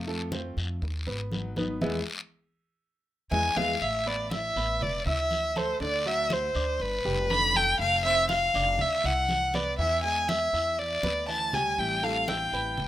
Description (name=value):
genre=latin, Cuban son and guajira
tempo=120 BPM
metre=4/4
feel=straight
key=A minor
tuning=A4 = 440 Hz
part: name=nylon-string guitar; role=accompaniment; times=0.0-3.7, 11.8-12.8 s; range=E3 to B4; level=-36 LUFS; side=left 2 dB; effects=none
part: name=upright bass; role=bass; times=0.0-12.9 s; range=E1 to F2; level=-34 LUFS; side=equal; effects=none
part: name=clear baby grand piano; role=arpeggios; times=0.1-12.9 s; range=D3 to F6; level=-36 LUFS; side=right 3 dB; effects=none
part: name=congas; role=percussion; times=0.1-12.9 s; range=none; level=-36 LUFS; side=right 1 dB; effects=none
part: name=guiro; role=percussion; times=0.3-12.9 s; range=none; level=-38 LUFS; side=left 3 dB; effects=none
part: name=warm violin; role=melody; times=3.3-12.8 s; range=B4 to B5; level=-26 LUFS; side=equal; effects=tape echo
room=moderate small room reverb, RT60 0.5 s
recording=rough home demo mix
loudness=-25 LUFS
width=side -13 dB against mid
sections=0.0-3.8 A section; 3.8-12.9 A section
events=band accent 1.8-3.8; drum fill 11.0-11.8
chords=0.0 F; 0.8 B; 1.8 E; 3.8 Asus2; 4.8 E5; 5.8 D7; 6.8 G7; 7.8 F; 8.8 Dadd9; 9.8 E7; 11.8 Am7